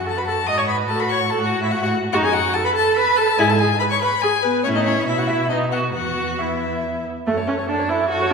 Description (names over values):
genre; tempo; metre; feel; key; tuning
quick classical-period movement for string quartet; 143 BPM; 3/4; straight; E major; A4 = 440 Hz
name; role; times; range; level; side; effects
rich violin; melody; 0.0-8.3 s; B4 to D#6; -22 LUFS; left 6 dB; none
rich violin; second line; 0.0-8.3 s; B3 to C#5; -26 LUFS; left 3 dB; none
warm cello; bass; 0.0-8.3 s; E2 to B2; -26 LUFS; right 2 dB; none
rich viola; accompaniment; 0.1-8.3 s; A3 to D#5; -21 LUFS; right 3 dB; none
room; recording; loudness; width
wet scoring stage reverb, RT60 1.5 s; recorded in a church or concert hall; -17 LUFS; side -5 dB against mid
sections
0.0-7.3 A section; 7.3-8.3 B section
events
none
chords
0.0 F#madd9; 0.9 F#m/A; 2.1 F#madd11; 3.4 E/G# (rootless); 4.6 A; 5.1 E5/B; 5.5 B; 5.9 E5; 7.3 F#m